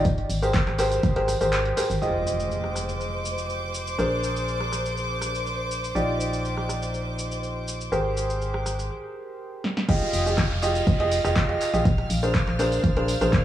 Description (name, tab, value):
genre	piano house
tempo	122 BPM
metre	4/4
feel	straight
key	F dorian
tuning	A4 = 437 Hz
part	clear upright piano	riff	0.0-13.4 s	D4 to Eb5	-26 LUFS	right 1 dB	sidechain pumping, analog delay
part	organ-like FM bass	bass	0.0-13.4 s	F1 to Bb1	-28 LUFS	equal	sidechain pumping
part	tambourine	percussion	0.0-2.0, 9.9-13.4 s	none	-42 LUFS	right 1 dB	analog delay
part	electronic kick drum	drums	0.1-1.1, 9.9-13.4 s	none	-22 LUFS	equal	none
part	punchy analog drum machine	drums	0.1-13.4 s	crash cymbal, handclaps, hi-hat, rim click, shaker, snare drum	-32 LUFS	equal	analog delay
part	clear studio violin section	sustained chords	2.0-13.4 s	C5 to F6	-32 LUFS	equal	sidechain pumping
part	impact and downlifter	sound effects	2.0-4.0, 9.9-13.4 s	none	-37 LUFS	equal	none
room	moderate spring reverb, RT60 1.6 s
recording	echo-heavy mix, small room ambience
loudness	-22 LUFS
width	side -12 dB against mid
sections	0.0-2.0 A section; 2.0-9.9 B section; 9.9-13.4 C section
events	kick drops out 1.5-2.0; impact 2.0-4.0; break 8.9-9.9; drum fill 9.6; drop 9.9-13.4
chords	0.1 Abmaj9; 2.0 Fm9; 4.0 Bb9; 6.0 Ebmaj9/Bb; 7.9 Abmaj9; 9.9 Fm9; 11.9 Bb9